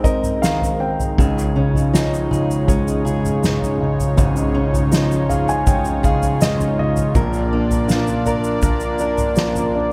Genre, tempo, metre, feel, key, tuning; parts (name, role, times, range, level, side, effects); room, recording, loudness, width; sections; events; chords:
pop ballad; 80 BPM; 4/4; straight; A4 = 440 Hz
warm grand piano; accompaniment; 0.0-9.9 s; Ab1 to Ab5; -22 LUFS; equal
warm analog pad; sustained chords; 0.0-9.9 s; Ab3 to D5; -27 LUFS; equal; chorus
fingerpicked acoustic archtop guitar; arpeggios; 0.0-9.9 s; Bb2 to Bb4; -27 LUFS; equal; delay
soft-mallet drum kit; drums; 0.0-9.7 s; kick drum, snare drum, toms; -23 LUFS; equal
tube shaker; percussion; 0.0-9.7 s; -37 LUFS; equal
studio ambience; -18 LUFS; mono
0.0-9.9 A section
grand piano fill 0.0-1.2, 4.9-7.2
0.0 Abadd9; 1.2 Dbadd9; 7.2 Bb